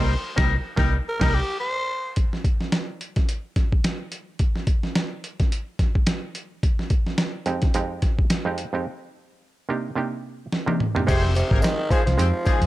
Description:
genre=funk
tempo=108 BPM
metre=4/4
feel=swing 56% on 16ths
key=F dorian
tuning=A4 = 440 Hz
part: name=growling tenor saxophone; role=melody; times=0.0-2.1, 11.1-12.7 s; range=C3 to C5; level=-26 LUFS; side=equal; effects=none
part: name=clear horn section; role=second line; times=0.0-1.4, 11.1-12.7 s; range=G3 to C5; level=-32 LUFS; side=left 1 dB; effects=none
part: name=electric guitar with an envelope filter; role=accompaniment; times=0.0-1.4, 11.1-12.6 s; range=Eb4 to D5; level=-30 LUFS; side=left 7 dB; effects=none
part: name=muted clav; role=stabs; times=0.0-1.4, 7.5-12.6 s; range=F2 to G4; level=-28 LUFS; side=right 4 dB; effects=overdrive
part: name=vintage muted fingered electric bass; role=bass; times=0.0-1.4, 11.1-12.7 s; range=F1 to F2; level=-22 LUFS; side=equal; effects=none
part: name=dusty soul sampler-style drum kit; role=drums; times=0.4-12.7 s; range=crash cymbal, hi-hat, kick drum, snare drum, toms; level=-22 LUFS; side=equal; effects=overdrive
part: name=tambourine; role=percussion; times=11.1-12.6 s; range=none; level=-44 LUFS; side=left 5 dB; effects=none
room=digital ambience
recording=dark, warm production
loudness=-21 LUFS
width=side -16 dB against mid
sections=0.0-2.2 A section; 2.2-11.1 B section; 11.1-12.7 C section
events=band accent 0.0-2.2; tenor saxophone solo 0.0-2.2; break 8.9-11.1; drum fill 10.5-11.1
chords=0.0 Cm7; 2.2 Fm7; 8.9 Cm7; 11.1 Fm7

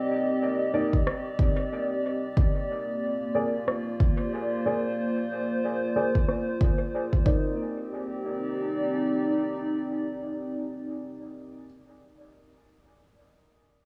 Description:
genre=ambient dub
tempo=92 BPM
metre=4/4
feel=swing 60% on 16ths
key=C minor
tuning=A4 = 440 Hz
part: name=warbly tape-like pad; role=sustained chords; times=0.0-11.0 s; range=Bb3 to Eb5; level=-31 LUFS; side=equal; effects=chorus, built-in reverb
part: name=dark upright piano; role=stabs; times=0.7-11.7 s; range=Bb3 to D5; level=-34 LUFS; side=equal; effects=vintage 12-bit sampler grit, low-pass filter, dub echo
part: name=electronic kick drum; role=drums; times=0.9-7.4 s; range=none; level=-26 LUFS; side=equal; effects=none
part: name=electronic rim click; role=drums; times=1.1-6.4 s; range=none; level=-35 LUFS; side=equal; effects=low-pass filter on hats, low-pass filter on snare, dub echo
room=light reverb, digital ambience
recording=echo-heavy mix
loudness=-28 LUFS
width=mono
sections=0.0-7.6 A section; 7.6-10.2 B section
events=filter sweep on drum 0.0-7.6; filter sweep on upright piano 0.0-7.6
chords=0.0 Cmadd9; 2.4 Bb; 7.3 Cm9

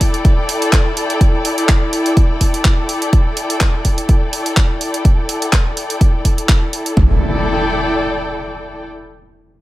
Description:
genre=minimal techno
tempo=125 BPM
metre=4/4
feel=swing 54% on 16ths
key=E minor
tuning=A4 = 440 Hz
part: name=house drum kit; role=drums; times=0.0-7.1 s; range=kick drum, toms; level=-13 LUFS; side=equal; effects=none
part: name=house drum kit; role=drums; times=0.0-6.9 s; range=handclaps, hi-hat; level=-20 LUFS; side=right 1 dB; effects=none
part: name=muted studio string section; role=texture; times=0.0-8.8 s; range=E4 to G5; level=-19 LUFS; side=left 1 dB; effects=sidechain pumping
part: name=punchy sub bass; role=bass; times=7.0-7.2 s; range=E1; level=-17 LUFS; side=equal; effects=sidechain pumping
part: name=impact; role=sound effects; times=7.0-8.9 s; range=none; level=-22 LUFS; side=equal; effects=none
room=light reverb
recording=none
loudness=-13 LUFS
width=side -16 dB against mid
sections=0.0-7.0 A section; 7.0-8.9 B section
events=none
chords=0.0 Em

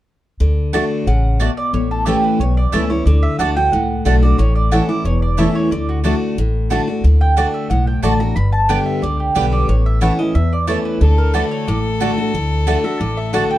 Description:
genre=bluegrass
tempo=181 BPM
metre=4/4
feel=straight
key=D major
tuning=A4 = 440 Hz
part: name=picked steel-string acoustic guitar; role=accompaniment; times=0.4-13.6 s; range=E2 to G4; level=-19 LUFS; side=left 2 dB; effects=none
part: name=upright bass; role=bass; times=0.4-13.4 s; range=E1 to E2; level=-16 LUFS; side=equal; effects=none
part: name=mandolin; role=stabs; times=0.7-13.4 s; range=A3 to A5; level=-23 LUFS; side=right 6 dB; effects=none
part: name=mandolin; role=melody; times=1.1-13.6 s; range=F#4 to B5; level=-21 LUFS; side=right 2 dB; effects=none
part: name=clear fiddle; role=second line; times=11.0-13.6 s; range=A4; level=-25 LUFS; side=left 2 dB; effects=none
room=light reverb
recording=dark, warm production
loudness=-14 LUFS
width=side -14 dB against mid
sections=0.4-13.6 A section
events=none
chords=0.4 D; 1.7 A; 3.1 D; 4.4 A; 5.7 D; 8.4 G; 9.7 A; 11.0 D

